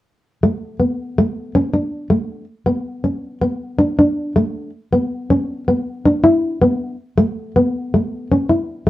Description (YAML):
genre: highlife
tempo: 107 BPM (dotted quarters)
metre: 12/8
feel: straight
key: unclear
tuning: A4 = 441 Hz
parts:
  - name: nylon-string guitar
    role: solo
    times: 0.4-8.9 s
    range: A3 to E4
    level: -15 LUFS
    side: left 1 dB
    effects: none
room: moderate studio reverb, RT60 0.6 s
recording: band playing live in one room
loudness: -16 LUFS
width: side -15 dB against mid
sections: 0.4-8.9 A section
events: none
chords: none